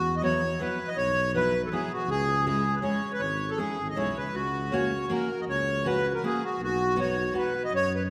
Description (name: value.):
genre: alpine folk, alpine dance band.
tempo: 160 BPM.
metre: 3/4.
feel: straight.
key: E major.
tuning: A4 = 440 Hz.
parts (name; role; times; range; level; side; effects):
accordion; melody; 0.0-8.0 s; F#4 to D#5; -30 LUFS; equal; none.
dark tuba; bass; 0.0-8.1 s; G#1 to F#2; -35 LUFS; equal; none.
fingerpicked steel-string acoustic guitar; accompaniment; 0.2-7.5 s; F#3 to F#4; -34 LUFS; equal; none.
room: wet concert hall reverb, RT60 2.0 s.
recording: recorded in a church or concert hall.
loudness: -28 LUFS.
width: mono.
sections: 0.0-8.1 A section.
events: none.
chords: 0.0 Esus2; 2.1 C#m; 4.3 F#/C#; 6.6 B.